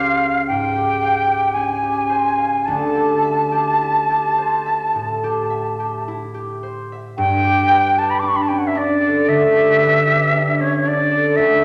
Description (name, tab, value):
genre	classical, impressionist duo for flute and harp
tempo	52-59 BPM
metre	4/4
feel	rubato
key	G lydian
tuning	A4 = 440 Hz
part	silver concert flute	melody	0.0-11.6 s	C#5 to D6	-19 LUFS	equal	none
part	concert harp	accompaniment	0.0-11.6 s	C#2 to E#5	-22 LUFS	equal	none
room	wet recital hall reverb, RT60 1.5 s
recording	none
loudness	-18 LUFS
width	mono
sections	0.0-7.2 A section; 7.2-11.6 B section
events	none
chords	0.0 C#maj7#11; 2.7 D9sus4; 7.2 Gadd9